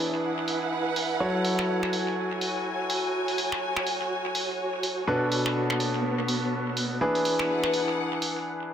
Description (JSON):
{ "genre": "piano house", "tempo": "124 BPM", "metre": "4/4", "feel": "swing 59% on 16ths", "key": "F# minor", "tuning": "A4 = 440 Hz", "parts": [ { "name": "bright concert grand piano", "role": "riff", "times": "0.0-8.7 s", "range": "B2 to C#5", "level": "-28 LUFS", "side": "equal", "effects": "tape echo" }, { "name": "warm studio string section", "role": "texture", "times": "0.0-8.5 s", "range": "B3 to G#5", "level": "-29 LUFS", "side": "equal", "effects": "none" }, { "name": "punchy analog drum machine", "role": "drums", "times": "0.5-8.3 s", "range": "finger snaps, hi-hat", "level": "-32 LUFS", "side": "right 2 dB", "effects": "low-pass filter on hats, low-pass filter on snare, tape echo" } ], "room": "moderate plate reverb, RT60 1.5 s, small room ambience", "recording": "echo-heavy mix", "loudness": "-25 LUFS", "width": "side -9 dB against mid", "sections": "0.0-8.7 A section", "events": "break 8.5", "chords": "0.0 E7; 1.2 F#m7; 5.1 Bm7; 7.0 E7", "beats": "0.24 0.72 | 1.20 1.69 2.17 2.65 | 3.14 3.62 4.11 4.59 | 5.07 5.56 6.04 6.53 | 7.01 7.49 7.98 8.46" }